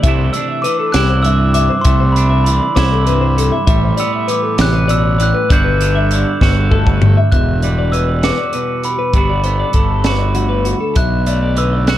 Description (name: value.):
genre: math rock and midwest emo.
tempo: 66 BPM (dotted quarters).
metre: 6/8.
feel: straight.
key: G major.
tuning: A4 = 440 Hz.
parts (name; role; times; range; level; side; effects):
clean electric guitar; accompaniment; 0.0-12.0 s; D2 to F#4; -21 LUFS; right 7 dB; none.
twelve-string electric guitar; arpeggios; 0.0-12.0 s; F#4 to E5; -21 LUFS; left 7 dB; digital delay.
fuzz fingered electric bass; bass; 0.0-11.9 s; E1 to C2; -15 LUFS; equal; overdrive.
crisp fusion drum kit; drums; 0.0-12.0 s; hi-hat, kick drum, snare drum, toms; -16 LUFS; equal; none.
glockenspiel with soft plastic mallets; melody; 0.3-12.0 s; B5 to G6; -20 LUFS; right 1 dB; digital delay.
room: light reverb.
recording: dark, warm production.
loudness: -12 LUFS.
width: side -13 dB against mid.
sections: 0.0-7.3 A section; 7.3-12.0 B section.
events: drum fill 6.4-7.3.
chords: 0.0 C69; 3.7 Am9; 5.5 Gmaj7; 7.3 Em9; 9.1 Gmaj9; 11.0 Bm7.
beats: | 0.05 0.96 | 1.86 2.77 | 3.68 4.59 | 5.50 6.41 | 7.32 8.23 | 9.14 10.05 | 10.97 11.88.